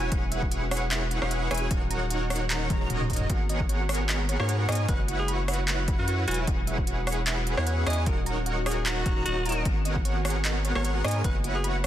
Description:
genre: future bass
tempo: 151 BPM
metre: 4/4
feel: swing 54% on 16ths, half-time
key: unclear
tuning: A4 = 436 Hz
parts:
  - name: ethereal airy pad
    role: sustained chords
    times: 0.0-11.9 s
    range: D#3 to B4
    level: -40 LUFS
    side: left 2 dB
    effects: ensemble chorus, built-in reverb, sidechain pumping
  - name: airy dreamy lead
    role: arpeggios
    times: 0.0-11.9 s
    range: D#5 to A#5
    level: -37 LUFS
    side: equal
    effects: chorus, sidechain pumping, ping-pong delay
  - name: thumb-piano-like synth pluck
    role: arpeggios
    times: 0.0-11.9 s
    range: F#4 to B5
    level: -39 LUFS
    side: right 3 dB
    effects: chorus, sidechain pumping, ping-pong delay
  - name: dense compressed supersaw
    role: riff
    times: 0.0-11.9 s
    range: B3 to A#5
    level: -32 LUFS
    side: right 1 dB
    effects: cassette tape, sidechain pumping, ping-pong delay
  - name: saturated sub bass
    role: bass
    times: 0.0-11.9 s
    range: D#1 to G#2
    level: -29 LUFS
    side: equal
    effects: sidechain pumping
  - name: electronic kick drum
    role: drums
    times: 0.1-11.3 s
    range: none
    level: -28 LUFS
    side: equal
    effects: none
  - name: trap drum kit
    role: drums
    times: 0.1-11.9 s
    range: handclaps, hi-hat, rim click, toms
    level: -31 LUFS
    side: equal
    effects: overdrive
  - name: swell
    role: sound effects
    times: 2.6-3.3 s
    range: none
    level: -40 LUFS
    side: equal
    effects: none
  - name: growling alto saxophone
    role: melody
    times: 4.4-11.7 s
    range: F#4 to D#5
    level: -34 LUFS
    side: equal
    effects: sidechain pumping, ping-pong delay
room: digital ambience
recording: dense, heavily limited modern master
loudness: -24 LUFS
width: side -12 dB against mid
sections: 0.0-11.9 A section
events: swell 2.6-3.3; drum fill 2.7-3.3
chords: 0.0 E69; 1.7 D#m7; 3.3 G#m11; 4.9 E69; 8.1 D#m7; 9.7 G#m11; 11.2 E69

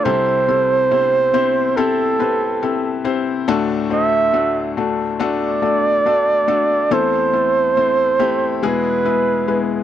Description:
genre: pop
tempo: 70 BPM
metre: 4/4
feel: straight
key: unclear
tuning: A4 = 441 Hz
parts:
  - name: breathy flugelhorn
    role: melody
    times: 0.0-9.8 s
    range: A4 to E5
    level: -16 LUFS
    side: right 4 dB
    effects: none
  - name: felt-muted upright piano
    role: accompaniment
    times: 0.0-9.8 s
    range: C2 to C5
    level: -19 LUFS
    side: left 6 dB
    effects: none
room: light reverb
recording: dry, close 1970s-style studio recording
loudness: -15 LUFS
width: side -10 dB against mid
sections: 0.0-9.8 A section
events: none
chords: 0.0 Am7/C; 3.5 D; 6.9 Am/E; 8.6 E

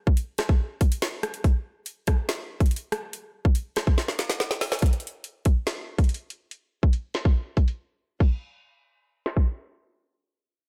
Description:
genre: hip hop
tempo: 142 BPM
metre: 4/4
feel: half-time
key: none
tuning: none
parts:
  - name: drill drum kit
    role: drums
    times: 0.1-9.5 s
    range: crash cymbal, hi-hat, kick drum, rim click, snare drum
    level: -24 LUFS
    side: equal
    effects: none
room: little or no reverb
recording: low-pass filter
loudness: -26 LUFS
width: mono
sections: 0.0-4.8 A section; 4.8-8.2 B section; 8.2-10.7 C section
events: drum fill 4.0-4.8; filter sweep 4.8-8.2; break 7.8-8.2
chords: none

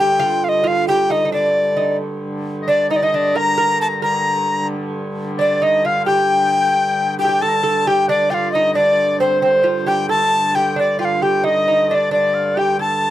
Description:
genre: medieval dance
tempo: 89 BPM (dotted quarters)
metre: 6/8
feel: straight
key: G minor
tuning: A4 = 440 Hz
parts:
  - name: bright reedy tenor recorder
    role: melody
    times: 0.0-13.1 s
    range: C5 to Bb5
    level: -16 LUFS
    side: left 1 dB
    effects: none
  - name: lute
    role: second line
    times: 0.0-13.1 s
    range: C4 to Bb4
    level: -22 LUFS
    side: right 5 dB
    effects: none
  - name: warm hurdy-gurdy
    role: drone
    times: 0.0-13.1 s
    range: G2 to D3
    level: -25 LUFS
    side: right 1 dB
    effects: none
  - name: clear shawm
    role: second line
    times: 2.6-13.1 s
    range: C5 to Bb5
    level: -24 LUFS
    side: left 5 dB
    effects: none
room: light reverb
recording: dry, close 1970s-style studio recording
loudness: -15 LUFS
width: side -13 dB against mid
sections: 0.0-7.4 A section; 7.4-13.1 B section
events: none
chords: none

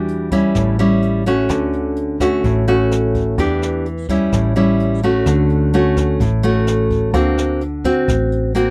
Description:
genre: bossa nova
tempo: 128 BPM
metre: 4/4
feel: straight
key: D major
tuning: A4 = 440 Hz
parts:
  - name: nylon-string guitar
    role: accompaniment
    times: 0.0-8.7 s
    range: A2 to G4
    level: -18 LUFS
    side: equal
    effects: none
  - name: hollow-body short-scale fingered electric bass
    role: bass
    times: 0.0-8.7 s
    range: A1 to E2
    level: -22 LUFS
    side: equal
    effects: none
  - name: jazz brush drum kit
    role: drums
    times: 0.1-8.7 s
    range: hi-hat, kick drum, rim click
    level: -28 LUFS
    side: equal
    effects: none
room: little or no reverb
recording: dry, close 1970s-style studio recording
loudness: -17 LUFS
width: mono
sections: 0.0-5.3 A section; 5.3-8.7 B section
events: none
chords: 0.0 Em9; 0.6 A7; 1.5 Dmaj7; 3.4 Em7; 4.3 A7; 5.3 Dmaj7; 7.1 D7b13

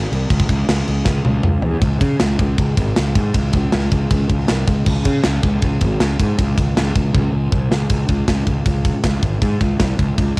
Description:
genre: heavy metal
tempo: 158 BPM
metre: 4/4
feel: straight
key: unclear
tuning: A4 = 440 Hz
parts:
  - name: fuzz picked electric bass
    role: bass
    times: 0.0-10.4 s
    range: G#1 to C#3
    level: -18 LUFS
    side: equal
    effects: overdrive
  - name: tight metal drum kit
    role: drums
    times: 0.1-10.4 s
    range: crash cymbal, kick drum, ride cymbal, snare drum, toms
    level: -18 LUFS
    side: equal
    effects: cassette tape
room: little or no reverb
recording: home recording on cassette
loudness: -15 LUFS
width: side -28 dB against mid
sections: 0.0-1.8 A section; 1.8-7.9 B section; 7.9-10.4 C section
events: drum fill 1.1-1.8, 7.1-7.9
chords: none

